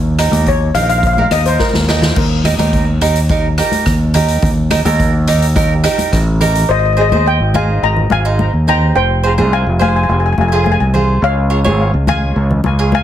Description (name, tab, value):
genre	calypso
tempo	106 BPM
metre	4/4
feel	straight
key	unclear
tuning	A4 = 438 Hz
part	overdriven fingered electric bass	bass	0.0-13.0 s	F1 to Eb2	-14 LUFS	equal	none
part	cavaquinho	accompaniment	0.2-13.0 s	Eb4 to Db5	-18 LUFS	right 4 dB	none
part	street-band drum kit	drums	0.2-6.7 s	crash cymbal, hi-hat, kick drum, rim click, snare drum	-18 LUFS	equal	none
part	congas	percussion	0.3-13.0 s	none	-21 LUFS	left 1 dB	none
part	steel pan	melody	0.5-1.9, 6.7-13.0 s	Bb4 to Bb5	-17 LUFS	left 4 dB	plate reverb, ping-pong delay
room	light reverb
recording	heavily compressed radio sound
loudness	-11 LUFS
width	side -11 dB against mid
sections	0.0-2.2 A section; 2.2-6.7 B section; 6.7-13.0 C section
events	steel pan solo 0.0-2.2; drum fill 1.6-2.2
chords	0.0 Eb; 6.7 Ab; 9.0 Fmadd9; 11.2 Db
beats	0.46 1.03 1.59 | 2.16 2.73 3.29 3.86 | 4.42 4.99 5.56 6.12 | 6.69 7.26 7.82 8.39 | 8.96 9.53 10.09 10.66 | 11.23 11.79 12.36 12.93